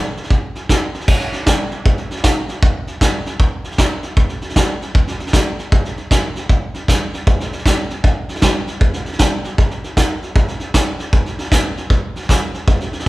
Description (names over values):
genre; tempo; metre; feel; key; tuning
country; 155 BPM; 4/4; swing 64% on 8ths; none; none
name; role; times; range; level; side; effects
vintage brush drum kit; drums; 0.2-13.0 s; crash cymbal, hi-hat, kick drum, snare drum; -15 LUFS; equal; none
room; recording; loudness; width
moderate large studio reverb, RT60 1.2 s; band playing live in one room; -15 LUFS; side -18 dB against mid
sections
0.0-1.1 A section; 1.1-13.1 B section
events
none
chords
none